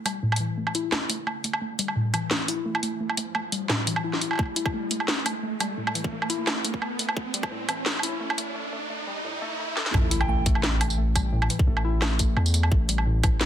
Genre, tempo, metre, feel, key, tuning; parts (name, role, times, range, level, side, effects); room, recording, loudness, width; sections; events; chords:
half-time drum and bass; 173 BPM; 4/4; swing 54% on 16ths, half-time; A4 = 444 Hz
riser and impact; sound effects; 1.2-11.3 s; -35 LUFS; right 1 dB
warbly dusty pluck; arpeggios; 0.1-13.5 s; A2 to A4; -30 LUFS; left 2 dB; chorus, dub echo
drum and bass drum kit; drums; 0.1-13.5 s; hi-hat, snare drum, tambourine, woodblock; -27 LUFS; right 1 dB
electronic kick drum; drums; 4.4-7.5, 9.9-13.3 s; -24 LUFS; equal
long sustained 808-style bass; bass; 9.9-13.5 s; A1 to E2; -24 LUFS; equal; tube saturation
soft synth bell; melody; 10.2-10.3 s; G5; -36 LUFS; right 5 dB; chorus, phaser, dub echo
light reverb, digital ambience; dense, heavily limited modern master, high-pass filter; -23 LUFS; side -10 dB against mid
0.0-9.9 A section; 9.9-13.5 B section
build-up 0.0-9.9; filter sweep on synth pluck 0.0-9.9; riser 1.2-9.9; break 8.6-9.9; drum fill 9.8; drop 9.9-13.5; impact 9.9-11.3
0.0 A5